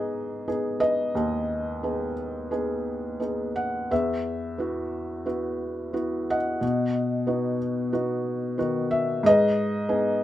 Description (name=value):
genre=classical, lyrical solo piano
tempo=89 BPM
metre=4/4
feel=rubato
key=G# minor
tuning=A4 = 440 Hz
part: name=felt-muted upright piano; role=solo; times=0.0-10.2 s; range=D#2 to F#5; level=-24 LUFS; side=equal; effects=none
room=light reverb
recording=minimal, uncompressed stereo recording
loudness=-24 LUFS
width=side -13 dB against mid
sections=0.0-10.2 A section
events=none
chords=0.0 G#m; 3.9 Esus2; 6.6 B; 9.2 G#m